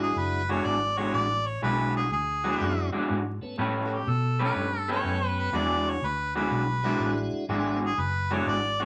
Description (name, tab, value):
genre	blues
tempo	123 BPM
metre	4/4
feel	swing 68% on 8ths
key	E mixolydian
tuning	A4 = 439 Hz
part	clear harmonica	melody	0.0-8.8 s	F#4 to D5	-31 LUFS	equal	overdrive
part	tonewheel organ	accompaniment	0.0-7.8 s	G#3 to A4	-36 LUFS	equal	slow rotary speaker, overdrive
part	electric guitar through a small old amp	riff	0.0-8.8 s	E3 to B4	-31 LUFS	equal	none
part	vintage muted fingered electric bass	bass	0.0-8.8 s	F#1 to B2	-34 LUFS	equal	none
room	wet club reverb, RT60 0.7 s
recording	vinyl crackle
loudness	-27 LUFS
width	mono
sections	0.0-8.8 A section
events	none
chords	0.0 E9; 3.6 A9; 5.5 E9